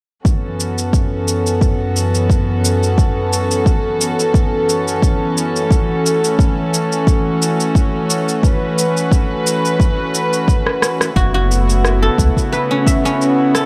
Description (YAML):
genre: organic downtempo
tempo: 88 BPM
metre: 4/4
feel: swing 54% on 16ths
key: unclear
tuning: A4 = 440 Hz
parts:
  - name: dark studio string section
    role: sustained chords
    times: 0.2-13.7 s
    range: F#2 to B4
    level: -19 LUFS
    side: equal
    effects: vintage 12-bit sampler grit, sidechain pumping
  - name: electronic kick drum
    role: drums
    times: 0.2-13.0 s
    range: none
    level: -17 LUFS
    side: equal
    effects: overdrive
  - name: electronic cabasa and rim click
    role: drums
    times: 0.3-13.7 s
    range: none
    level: -23 LUFS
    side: equal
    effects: none
  - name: guzheng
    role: arpeggios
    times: 11.2-13.7 s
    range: C#4 to E5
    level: -19 LUFS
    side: equal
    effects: tape echo
  - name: warm sub bass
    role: bass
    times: 11.2-12.3 s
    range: F#1 to C#2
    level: -17 LUFS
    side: equal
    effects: tube saturation, sidechain pumping
room: light reverb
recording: none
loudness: -16 LUFS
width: mono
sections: 0.3-11.2 A section; 11.2-13.7 B section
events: drum fill 10.7-11.2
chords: 0.3 A69/F#; 5.7 F#m7; 11.2 A69/F#